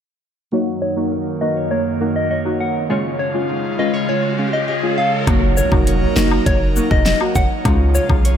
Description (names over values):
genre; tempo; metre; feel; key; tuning
dancehall; 101 BPM; 4/4; straight; unclear; A4 = 440 Hz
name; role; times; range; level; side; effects
deep mellow chord stab; accompaniment; 0.5-8.4 s; Ab3 to Gb4; -22 LUFS; left 1 dB; chorus, low-pass filter
airy breathy pad; sustained chords; 0.5-8.4 s; Gb2 to Bb4; -24 LUFS; right 1 dB; chorus, sidechain pumping, low-pass filter
nylon-string guitar; arpeggios; 0.5-8.4 s; Db3 to Db5; -26 LUFS; right 4 dB; low-pass filter, tape echo
riser and impact; sound effects; 2.6-7.7 s; none; -28 LUFS; equal; none
soft struck synth lead; melody; 0.8-8.1 s; Db5 to Gb5; -22 LUFS; left 2 dB; chorus, low-pass filter, tape echo
hard-hitting 808-style bass; bass; 5.3-8.4 s; F1 to Db2; -17 LUFS; equal; none
pop drum kit; drums; 5.3-8.4 s; handclaps, hi-hat, kick drum, rim click, snare drum; -18 LUFS; equal; overdrive
woodblock and cabasa; percussion; 5.3-8.2 s; none; -29 LUFS; left 6 dB; none
room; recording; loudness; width
moderate church reverb, RT60 3.6 s; dreamy mix soaked in reverb; -15 LUFS; side -8 dB against mid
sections
0.5-5.3 A section; 5.3-8.4 B section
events
filter sweep 0.5-5.3; riser 2.6-5.3; impact 5.3-7.7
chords
0.5 Gb6; 2.9 Db; 5.3 Gb6; 7.7 Db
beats
| 0.52 1.12 1.71 2.30 | 2.90 3.49 4.09 4.68 | 5.28 5.87 6.46 7.06 | 7.65 8.24